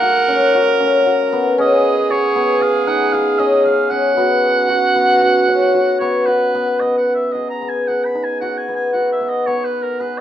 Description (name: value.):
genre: contemporary instrumental, chamber music in an uneven meter.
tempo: 115 BPM.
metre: 5/4.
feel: straight.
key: B lydian, B major from 6.8 s.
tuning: A4 = 440 Hz.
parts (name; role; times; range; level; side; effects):
clear oboe; melody; 0.0-10.2 s; A#4 to B5; -20 LUFS; right 3 dB; none.
warm viola; second line; 0.0-6.5 s; F#4 to A#4; -18 LUFS; right 4 dB; none.
hammered dulcimer; arpeggios; 0.0-10.2 s; A#3 to G#4; -16 LUFS; left 2 dB; none.
room: moderate recital hall reverb, RT60 1.4 s.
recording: dark, warm production.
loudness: -13 LUFS.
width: side -11 dB against mid.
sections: 0.0-6.8 A section; 6.8-10.2 B section.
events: none.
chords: 0.0 F#; 1.6 C#sus2.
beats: 0.02 0.54 1.06 | 1.58 2.10 2.62 3.13 3.65 | 4.17 4.69 5.21 5.74 6.27 | 6.81 7.34 7.88 8.41 8.94 | 9.47 10.00.